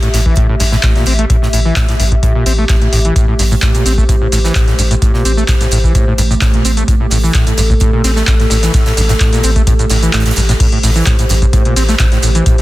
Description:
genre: acid house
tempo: 129 BPM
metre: 4/4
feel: straight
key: A minor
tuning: A4 = 440 Hz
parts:
  - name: warbly tape-like pad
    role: sustained chords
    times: 0.0-12.6 s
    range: A3 to E5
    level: -20 LUFS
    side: right 1 dB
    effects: chorus, built-in reverb, vintage 12-bit sampler grit, sidechain pumping
  - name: overdriven acid bass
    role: riff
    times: 0.0-12.6 s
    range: G2 to C4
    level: -17 LUFS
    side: equal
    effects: distortion, tube saturation, analog chorus, sidechain pumping, digital delay
  - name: booming analog drum machine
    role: drums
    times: 0.0-12.6 s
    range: cabasa, crash cymbal, handclaps, hi-hat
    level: -18 LUFS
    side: equal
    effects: none
  - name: gated 80s drum kit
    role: drums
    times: 0.0-12.6 s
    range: hi-hat, snare drum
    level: -24 LUFS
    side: right 2 dB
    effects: high-pass filter on hats, high-pass filter on snare, high-pass filter on room
  - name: round analog bass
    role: bass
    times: 0.1-12.4 s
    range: A1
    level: -14 LUFS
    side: equal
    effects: sidechain pumping
  - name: electronic kick drum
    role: drums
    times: 0.3-12.6 s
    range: none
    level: -12 LUFS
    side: equal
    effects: none
room: digital ambience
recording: dense, heavily limited modern master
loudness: -9 LUFS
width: side -17 dB against mid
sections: 0.0-10.6 A section; 10.6-12.6 B section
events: kick drops out 10.1-10.6; drop 10.6-12.6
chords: 0.0 Am7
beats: 0.37 0.83 | 1.30 1.76 2.23 2.69 | 3.16 3.62 4.09 4.55 | 5.02 5.49 5.95 6.42 | 6.88 7.35 7.81 8.28 | 8.74 9.21 9.67 10.14 | 10.60 11.07 11.53 12.00 | 12.46

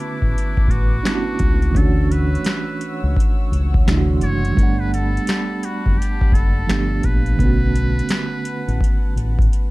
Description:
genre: lo-fi hip hop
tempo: 85 BPM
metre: 4/4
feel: swing 64% on 16ths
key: B minor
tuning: A4 = 440 Hz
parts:
  - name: trumpet with metal mute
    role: melody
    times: 0.0-9.5 s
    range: E4 to C#5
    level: -29 LUFS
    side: equal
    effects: low-pass filter
  - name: mellow reed electric piano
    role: accompaniment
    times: 0.0-9.7 s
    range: C3 to F#5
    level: -24 LUFS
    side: right 4 dB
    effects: fast tremolo, low-pass filter
  - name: dark studio string section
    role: sustained chords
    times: 0.0-9.7 s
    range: G3 to E6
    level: -33 LUFS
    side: left 2 dB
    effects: low-pass filter
  - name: fingered electric bass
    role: bass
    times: 0.2-9.5 s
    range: F#1 to D2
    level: -20 LUFS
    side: equal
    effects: none
  - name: booming analog drum machine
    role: drums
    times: 0.2-9.7 s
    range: finger snaps, hi-hat, kick drum, snare drum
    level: -18 LUFS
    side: equal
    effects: overdrive
room: little or no reverb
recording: dark, warm production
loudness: -16 LUFS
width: side -20 dB against mid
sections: 0.0-9.7 A section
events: drum fill 9.5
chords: 0.0 Bm9; 1.7 Dmaj9; 3.9 D9; 4.6 Gmaj9; 6.7 G9; 7.4 Bm7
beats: 0.34 1.04 | 1.75 2.45 3.16 3.86 | 4.57 5.28 5.98 6.69 | 7.39 8.10 8.80 9.51

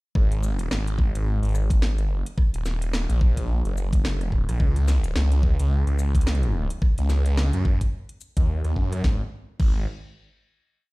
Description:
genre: glitch hop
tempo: 108 BPM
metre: 4/4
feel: swing 58% on 16ths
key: unclear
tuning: A4 = 441 Hz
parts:
  - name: phased detuned saw bass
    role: bass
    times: 0.2-9.9 s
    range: D#1 to F#2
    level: -22 LUFS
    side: equal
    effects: phaser
  - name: drum and bass drum kit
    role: drums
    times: 0.2-9.7 s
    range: crash cymbal, hi-hat, rim click, shaker, snare drum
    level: -34 LUFS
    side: equal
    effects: none
  - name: electronic kick drum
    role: drums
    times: 0.2-9.7 s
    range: none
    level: -21 LUFS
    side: equal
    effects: none
room: little or no reverb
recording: played on a big sound system in a bare room, stone room reverb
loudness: -21 LUFS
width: side -22 dB against mid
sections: 0.2-9.0 drop; 9.0-10.9 final note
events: drop 0.2-9.0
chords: none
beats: | 0.15 0.71 1.27 1.82 | 2.38 2.93 3.49 4.04 | 4.60 5.16 5.71 6.27 | 6.82 7.38 7.93 8.49 | 9.04 9.60

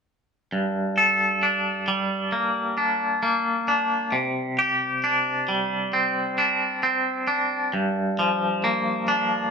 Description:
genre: rock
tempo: 66 BPM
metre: 4/4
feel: straight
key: G minor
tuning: A4 = 435 Hz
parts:
  - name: twangy electric guitar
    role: solo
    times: 0.5-9.5 s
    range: G2 to A4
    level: -21 LUFS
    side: equal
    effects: tremolo
room: wet studio reverb, RT60 0.7 s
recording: band playing live in one room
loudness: -21 LUFS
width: side -5 dB against mid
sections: 0.5-7.7 A section; 7.7-9.5 B section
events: build-up 7.7-9.5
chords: 0.5 Gmadd9; 4.1 Csus2; 7.7 Gm7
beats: | 0.51 1.42 2.32 3.23 | 4.13 5.03 5.93 6.84 | 7.74 8.63

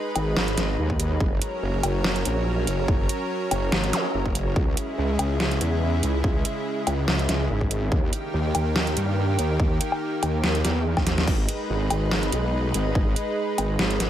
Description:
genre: heavy wobble dubstep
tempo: 143 BPM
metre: 4/4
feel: swing 54% on 16ths, half-time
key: G# minor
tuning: A4 = 438 Hz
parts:
  - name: lush unison pad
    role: sustained chords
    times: 0.0-14.1 s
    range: C#3 to B4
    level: -28 LUFS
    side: right 1 dB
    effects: chorus, sidechain pumping
  - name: wobble bass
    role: bass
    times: 0.2-14.1 s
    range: F#1 to G2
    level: -24 LUFS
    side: equal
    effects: chorus, overdrive
  - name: dubstep drum kit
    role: drums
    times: 0.2-14.1 s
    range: crash cymbal, hi-hat, snare drum, woodblock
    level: -26 LUFS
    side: equal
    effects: none
  - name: electronic kick drum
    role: drums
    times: 0.9-13.0 s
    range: none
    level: -24 LUFS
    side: equal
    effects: none
  - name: zap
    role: sound effects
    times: 3.9-4.0 s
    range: none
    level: -30 LUFS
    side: equal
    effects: none
room: light reverb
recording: none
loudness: -22 LUFS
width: side -11 dB against mid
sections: 0.0-14.1 A section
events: drum fill 11.0-11.3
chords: 0.0 G#m; 1.2 F#; 4.6 C#m; 7.9 D#; 11.3 G#m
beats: 0.37 0.79 | 1.21 1.62 2.04 2.46 | 2.88 3.30 3.72 4.14 | 4.56 4.98 5.40 5.82 | 6.24 6.66 7.08 7.50 | 7.92 8.34 8.76 9.18 | 9.60 10.02 10.44 10.86 | 11.28 11.69 12.11 12.53 | 12.95 13.37 13.79

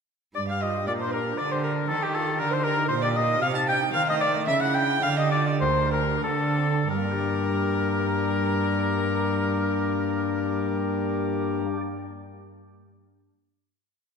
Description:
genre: classical, baroque-style sonata movement with continuo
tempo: 88-119 BPM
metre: 3/4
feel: straight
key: G minor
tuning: A4 = 441 Hz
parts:
  - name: rich violin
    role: second line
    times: 0.3-11.6 s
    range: G4 to A5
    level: -31 LUFS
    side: right 7 dB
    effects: none
  - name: rich cello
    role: bass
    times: 0.3-11.6 s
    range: D2 to Eb3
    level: -28 LUFS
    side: right 2 dB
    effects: none
  - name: warm oboe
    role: melody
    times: 0.4-11.6 s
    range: G4 to A5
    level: -27 LUFS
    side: left 3 dB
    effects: none
  - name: chamber organ, flutes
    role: accompaniment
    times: 0.4-11.8 s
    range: D2 to Eb5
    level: -29 LUFS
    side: left 3 dB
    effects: none
room: wet concert hall reverb, RT60 2.1 s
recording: minimal, uncompressed stereo recording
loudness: -22 LUFS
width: side -6 dB against mid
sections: 0.3-6.9 A section; 6.9-10.9 final chord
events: slowing down 2.6-6.9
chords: 0.3 Gm; 1.9 Eb; 3.4 Adim/C; 4.5 Em13/C#; 5.0 Gm/D; 6.2 D5; 6.9 Gm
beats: | 0.35 0.87 1.38 | 1.88 2.39 2.90 | 3.41 3.93 4.47 | 5.03 5.61 6.23 | 6.90 7.57 8.24 | 8.91 9.57 10.24

